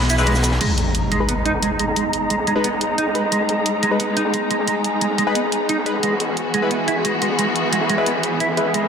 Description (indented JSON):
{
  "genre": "dark technical drum and bass",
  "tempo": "177 BPM",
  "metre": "4/4",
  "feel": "straight",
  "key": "G# minor",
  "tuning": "A4 = 439 Hz",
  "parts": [
    { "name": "warm studio string section", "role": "sustained chords", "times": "0.0-8.9 s", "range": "E3 to A#5", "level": "-24 LUFS", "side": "equal", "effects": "low-pass filter" },
    { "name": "metallic wobble bass", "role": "bass", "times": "0.0-0.6 s", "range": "B1", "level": "-18 LUFS", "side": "equal", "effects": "distortion, chorus" },
    { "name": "crunchy breakbeat drum kit", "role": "drums", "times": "0.0-8.9 s", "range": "hi-hat, ride cymbal, snare drum", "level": "-31 LUFS", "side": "equal", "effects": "none" },
    { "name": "mellow electric guitar", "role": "arpeggios", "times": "0.1-8.8 s", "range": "G#3 to E4", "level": "-23 LUFS", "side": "right 3 dB", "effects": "analog chorus, tape echo" },
    { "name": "drum and bass drum kit", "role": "drums", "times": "0.1-8.8 s", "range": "crash cymbal, hi-hat, shaker", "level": "-24 LUFS", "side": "equal", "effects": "none" },
    { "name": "band-passed chord stab", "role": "stabs", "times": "0.2-8.6 s", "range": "G#3 to B4", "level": "-25 LUFS", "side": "left 2 dB", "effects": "chorus, phaser, tape echo" },
    { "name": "impact", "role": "sound effects", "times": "0.6-2.0 s", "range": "none", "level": "-24 LUFS", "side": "equal", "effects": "none" },
    { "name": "warbly tape-like pad", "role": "texture", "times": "1.6-8.9 s", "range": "B3 to G#5", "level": "-25 LUFS", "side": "equal", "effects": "chorus, built-in reverb, phaser" }
  ],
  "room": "wet lush hall reverb, RT60 1.7 s, small room ambience",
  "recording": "dense, heavily limited modern master",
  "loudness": "-17 LUFS",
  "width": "side -7 dB against mid",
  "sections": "0.6-8.9 A section",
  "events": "impact 0.6-2.0; filter sweep on string section 0.6-8.9",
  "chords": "0.0 E; 0.6 G#m; 6.0 E",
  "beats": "0.27 | 0.61 0.95 1.28 1.62 | 1.96 2.30 2.64 2.98 | 3.32 3.66 4.00 4.34 | 4.67 5.01 5.35 5.69 | 6.03 6.37 6.71 7.05 | 7.39 7.73 8.06 8.40 | 8.74"
}